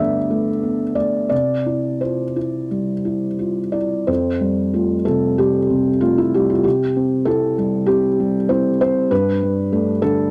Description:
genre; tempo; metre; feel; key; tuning
neoclassical minimalist piano; 84-99 BPM; 4/4; rubato; C major; A4 = 440 Hz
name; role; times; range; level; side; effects
felt-muted upright piano; solo; 0.0-10.3 s; F2 to E5; -19 LUFS; equal; none
room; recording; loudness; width
small room ambience; dry, close 1970s-style studio recording; -19 LUFS; mono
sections
0.0-4.1 A section; 4.1-10.3 B section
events
none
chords
0.0 Gadd9; 1.3 C; 4.1 Fadd9; 6.6 C; 9.1 Gadd9

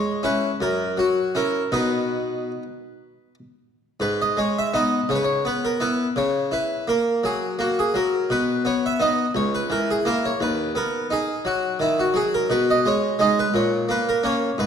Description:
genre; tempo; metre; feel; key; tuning
classical, baroque-style suite movement for harpsichord; 52-58 BPM (dotted quarters); 6/8; rubato; B major; A4 = 440 Hz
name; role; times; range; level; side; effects
harpsichord; solo; 0.0-14.7 s; C#2 to E5; -20 LUFS; equal; none
room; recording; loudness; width
wet scoring stage reverb, RT60 1.7 s; dark, warm production; -20 LUFS; side -7 dB against mid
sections
0.0-4.0 A section; 4.0-14.7 A section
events
none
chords
0.0 C#m; 0.6 F#5; 1.7 B; 4.0 G#m; 5.1 C#m7; 6.2 F#7/C#; 8.3 B; 9.3 A#dim/C#; 10.4 B/D#; 12.5 G#m/B; 13.5 A#m

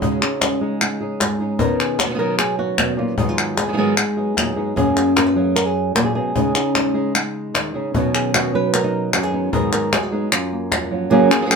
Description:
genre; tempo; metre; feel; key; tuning
flamenco; 152 BPM; 4/4; straight; F# major; A4 = 440 Hz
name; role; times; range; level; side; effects
flamenco guitar; melody; 0.0-11.6 s; F#2 to B4; -19 LUFS; right 1 dB; none
flamenco guitar; stabs; 0.0-11.6 s; G#2 to G#4; -24 LUFS; right 1 dB; none
cajon; percussion; 0.0-10.9 s; none; -24 LUFS; left 4 dB; none
palmas hand claps; percussion; 0.2-11.6 s; none; -20 LUFS; left 2 dB; none
room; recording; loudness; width
moderate studio reverb, RT60 0.6 s; band playing live in one room; -17 LUFS; side -5 dB against mid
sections
0.0-11.1 A section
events
none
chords
0.0 C#sus2; 1.6 Badd9; 3.2 G#m7; 4.8 F#add9; 6.4 C#sus2; 7.9 Badd9; 9.5 G#m7; 10.3 F#maj7

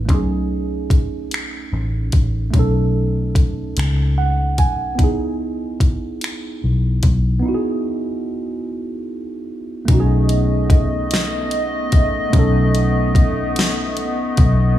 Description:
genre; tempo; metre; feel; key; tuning
slow six-eight R&B; 49 BPM (dotted quarters); 6/8; straight; unclear; A4 = 440 Hz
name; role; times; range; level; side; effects
tine electric piano; accompaniment; 0.0-14.8 s; A3 to G#5; -23 LUFS; right 4 dB; wide subtle chorus
vintage muted fingered electric bass; bass; 0.0-14.7 s; A1 to C#2; -18 LUFS; left 1 dB; none
smooth R&B drum kit; drums; 0.1-14.6 s; finger snaps, hi-hat, kick drum, snare drum; -16 LUFS; left 1 dB; none
hollow soft pad; sustained chords; 9.9-14.8 s; A3 to D#5; -22 LUFS; left 1 dB; chorus
room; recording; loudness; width
light reverb; small room ambience; -16 LUFS; side -12 dB against mid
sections
0.0-9.9 A section; 9.9-14.8 B section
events
tine electric piano fill 3.8-5.0; break 7.4-9.9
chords
0.1 B13; 5.0 C#m9; 9.9 B13

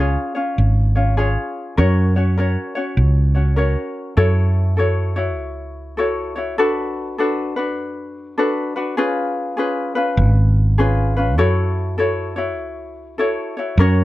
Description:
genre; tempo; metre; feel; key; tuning
Hawaiian; 100 BPM; 4/4; swing 64% on 8ths; F# major, F# minor from 4.2 s; A4 = 441 Hz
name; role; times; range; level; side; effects
ukulele; accompaniment; 0.0-14.0 s; C#4 to C#5; -20 LUFS; left 2 dB; none
woody fretless electric bass; bass; 0.0-14.0 s; G#1 to F#2; -16 LUFS; equal; none
room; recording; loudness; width
small room ambience; none; -16 LUFS; side -16 dB against mid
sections
0.0-4.2 A section; 4.2-13.8 B section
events
none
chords
0.0 C#; 1.8 F#; 4.2 F#m7; 6.6 Bm7; 9.0 C#7; 11.4 F#m7

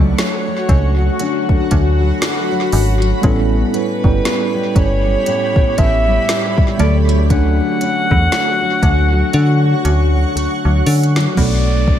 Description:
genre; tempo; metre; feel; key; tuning
contemporary R&B; 59 BPM; 4/4; swing 58% on 16ths; unclear; A4 = 440 Hz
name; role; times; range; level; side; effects
tine electric piano; accompaniment; 0.0-12.0 s; F#3 to A4; -22 LUFS; right 2 dB; medium stereo tremolo, tape echo
granular cloud pad; sustained chords; 0.0-12.0 s; F#4 to C#6; -23 LUFS; left 1 dB; built-in reverb, sidechain pumping
nylon-string guitar; arpeggios; 0.0-12.0 s; A2 to C#4; -22 LUFS; left 5 dB; tape echo
metallic FM bass; bass; 0.0-12.0 s; G1 to D3; -14 LUFS; equal; none
downlifter; sound effects; 0.0-3.2, 11.4-12.0 s; none; -34 LUFS; right 1 dB; none
breathy alto saxophone; melody; 0.2-12.0 s; B4 to F#5; -20 LUFS; right 1 dB; tape echo
smooth R&B drum kit; drums; 0.2-12.0 s; crash cymbal, hi-hat, kick drum, snare drum; -18 LUFS; equal; none
room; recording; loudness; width
little or no reverb; echo-heavy mix; -12 LUFS; side -10 dB against mid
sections
0.0-11.4 A section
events
drum fill 9.3-11.4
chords
0.0 Dmaj7; 3.2 A9; 6.8 Dmaj7; 11.4 Bm7

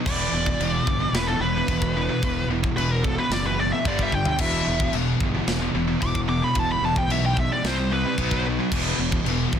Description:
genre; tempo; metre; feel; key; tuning
heavy metal; 111 BPM; 4/4; straight; E minor; A4 = 440 Hz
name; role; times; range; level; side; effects
fuzz guitar; riff; 0.0-9.6 s; E2 to C4; -29 LUFS; equal; distortion
heavy high-gain guitar; riff; 0.0-9.6 s; E2 to C4; -29 LUFS; right 9 dB; distortion
tight distorted guitar; riff; 0.0-9.6 s; E2 to C4; -31 LUFS; left 10 dB; distortion
high-gain lead guitar; melody; 0.1-8.4 s; A4 to D6; -26 LUFS; equal; distortion, digital delay
fuzz fingered electric bass; bass; 0.1-9.6 s; E1 to C2; -28 LUFS; equal; overdrive
tight metal drum kit; drums; 0.1-9.6 s; china cymbal, crash cymbal, kick drum, snare drum, toms; -27 LUFS; left 1 dB; soft clipping on kick
room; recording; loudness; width
light reverb; dense, heavily limited modern master; -20 LUFS; side -8 dB against mid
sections
0.0-9.6 A section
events
lead electric guitar solo 0.0-9.6; drum fill 4.1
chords
0.1 E5; 3.9 G5; 4.4 E5; 7.6 C5; 8.2 B5; 8.7 E5

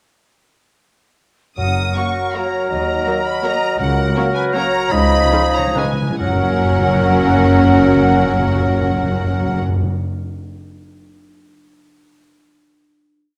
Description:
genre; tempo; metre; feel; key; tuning
classical, orchestral ballroom waltz; 129-175 BPM; 3/4; rubato; F# major; A4 = 439 Hz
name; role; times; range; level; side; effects
warm studio violin section; melody; 1.6-9.6 s; F#5 to D#6; -27 LUFS; equal; none
mellow clarinet; second line; 1.6-9.6 s; C#4 to F#4; -28 LUFS; equal; none
silver concert flute; second line; 1.6-9.6 s; A#4 to F#5; -25 LUFS; equal; none
warm oboe; second line; 1.6-9.6 s; G#4 to A#4; -27 LUFS; equal; none
warm bassoon; accompaniment; 1.6-9.6 s; E#3 to F#3; -24 LUFS; equal; none
rich studio double bass section; bass; 1.6-9.6 s; F#1 to D#2; -26 LUFS; equal; none
warm studio cello section; bass; 1.6-9.6 s; C#2 to F#2; -25 LUFS; equal; none
timpani; percussion; 1.6-9.9 s; F#2 to C#3; -25 LUFS; equal; none
warm studio violin section; second line; 1.9-9.6 s; D#4 to A#4; -29 LUFS; equal; none
warm studio viola section; accompaniment; 2.0-9.6 s; E#3 to C#4; -26 LUFS; equal; none
mellow French horn section; sustained chords; 2.0-9.6 s; E#3 to D#4; -25 LUFS; equal; none
room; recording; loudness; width
moderate scoring stage reverb, RT60 1.6 s; none; -16 LUFS; mono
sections
1.6-6.2 A section; 6.2-8.8 final chord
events
slowing down 3.2-6.2; timpani fill 4.9-6.2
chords
1.6 F#; 2.7 D#m; 3.8 F#/C#; 4.9 C#9; 6.2 F#

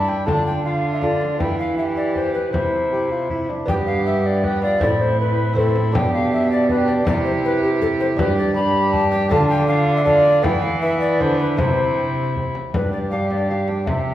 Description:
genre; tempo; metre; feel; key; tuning
classical, renaissance-style consort dance; 159 BPM; 3/4; straight; unclear; A4 = 439 Hz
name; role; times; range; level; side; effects
mellow hollow tenor recorder; melody; 0.0-14.1 s; G4 to B5; -22 LUFS; left 2 dB; none
dark violin; second line; 0.0-14.1 s; D4 to G4; -26 LUFS; right 3 dB; none
lute; accompaniment; 0.0-14.1 s; G2 to A4; -25 LUFS; right 1 dB; none
warm bassoon; accompaniment; 0.0-14.1 s; B3 to G4; -25 LUFS; equal; none
rich cello; bass; 0.0-14.1 s; G2 to E3; -23 LUFS; right 1 dB; none
frame drum; percussion; 0.1-14.0 s; none; -27 LUFS; left 1 dB; none
room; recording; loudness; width
wet recital hall reverb, RT60 1.4 s; heard from further back in the room; -17 LUFS; side -12 dB against mid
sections
0.0-3.7 A section; 3.7-12.7 A section; 12.7-14.1 B section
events
none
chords
0.3 Dm; 1.4 Em; 2.5 C; 3.7 G; 4.8 Am; 6.0 G/B; 7.1 C; 8.2 G; 9.3 Dm; 10.5 E5; 11.6 C; 12.7 G5

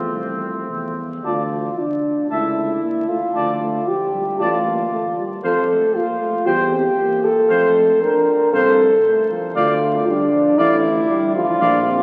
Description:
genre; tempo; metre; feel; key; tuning
classical, brass quintet; 116 BPM; 4/4; rubato; D minor; A4 = 440 Hz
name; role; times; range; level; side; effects
warm trumpet; melody; 0.0-11.8 s; F4 to A5; -34 LUFS; equal; none
clear trumpet; second line; 0.0-11.8 s; C4 to E5; -27 LUFS; equal; none
mellow French horn; accompaniment; 0.0-12.0 s; A3 to Bb4; -20 LUFS; equal; none
mellow euphonium; accompaniment; 0.0-12.0 s; F3 to D4; -30 LUFS; equal; none
mellow tuba; bass; 0.0-12.0 s; A1 to F2; -29 LUFS; equal; none
room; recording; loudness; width
wet cathedral reverb, RT60 5.8 s; very old 78 rpm record, vinyl crackle; -18 LUFS; mono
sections
0.0-1.2 A section; 1.2-12.0 B section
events
none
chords
0.0 F; 1.2 Dm; 2.3 A/C#; 3.4 Dm; 5.4 F; 6.5 C/E (rootless); 7.5 F; 9.6 Dm

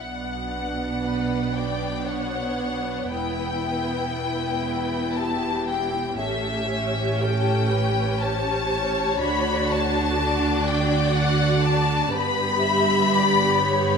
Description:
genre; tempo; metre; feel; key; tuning
classical, slow romantic movement for string orchestra; 56-63 BPM; 3/4; rubato; B minor; A4 = 441 Hz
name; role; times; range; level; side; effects
warm symphonic violin section; melody; 0.0-14.0 s; E5 to B5; -25 LUFS; left 5 dB; none
rich symphonic viola section; accompaniment; 0.0-14.0 s; B3 to G4; -27 LUFS; equal; none
clear symphonic cello section; bass; 0.0-14.0 s; E2 to D3; -29 LUFS; right 4 dB; none
warm symphonic double bass section; bass; 0.0-14.0 s; E1 to D2; -28 LUFS; right 3 dB; none
warm symphonic violin section; second line; 1.0-14.0 s; G4 to E5; -30 LUFS; left 2 dB; none
room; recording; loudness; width
moderate scoring stage reverb, RT60 1.6 s; none; -21 LUFS; side -6 dB against mid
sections
0.0-14.0 A section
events
none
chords
0.0 Bm; 3.1 Em; 6.2 A7; 9.2 D; 12.1 G

